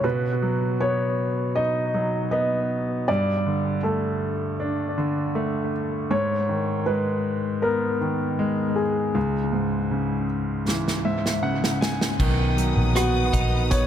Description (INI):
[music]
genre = pop ballad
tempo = 79 BPM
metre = 4/4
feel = straight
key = B major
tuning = A4 = 441 Hz
[part]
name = warm concert grand piano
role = melody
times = 0.0-13.9 s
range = F#4 to D#5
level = -26 LUFS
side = equal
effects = analog delay
[part]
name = bright grand piano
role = accompaniment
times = 0.0-13.9 s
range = C#2 to G#5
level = -24 LUFS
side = equal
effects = analog delay
[part]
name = natural country drum kit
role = drums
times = 10.7-13.9 s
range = crash cymbal, hi-hat, kick drum, rim click, snare drum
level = -25 LUFS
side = right 1 dB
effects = analog delay
[part]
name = rich studio string section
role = sustained chords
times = 12.2-13.9 s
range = B4 to D#6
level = -31 LUFS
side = left 4 dB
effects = none
[part]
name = twelve-string electric guitar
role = arpeggios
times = 12.2-13.9 s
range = B2 to D#4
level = -30 LUFS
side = right 6 dB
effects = none
[part]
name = vintage muted fingered electric bass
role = bass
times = 12.2-13.9 s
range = A#1 to B1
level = -23 LUFS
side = equal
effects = none
[sound]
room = light reverb, small room ambience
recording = echo-heavy mix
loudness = -21 LUFS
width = side -10 dB against mid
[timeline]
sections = 0.0-12.2 A section; 12.2-13.9 B section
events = grand piano fill 10.7-12.2; drum fill 10.7-12.2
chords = 0.0 B; 3.1 Gsus2; 6.1 G#m; 9.2 C#m; 12.2 B